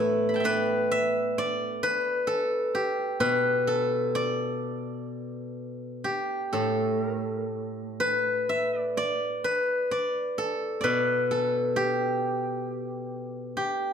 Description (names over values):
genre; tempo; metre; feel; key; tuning
chinese traditional, Chinese solo plucked strings; 60-67 BPM; 4/4; rubato; unclear; A4 = 439 Hz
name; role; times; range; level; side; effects
steel-string zither; solo; 0.0-13.9 s; A2 to B5; -25 LUFS; equal; none
room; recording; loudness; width
moderate recital hall reverb, RT60 1.3 s; dark, warm production; -25 LUFS; side -7 dB against mid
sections
0.0-13.9 A section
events
none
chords
none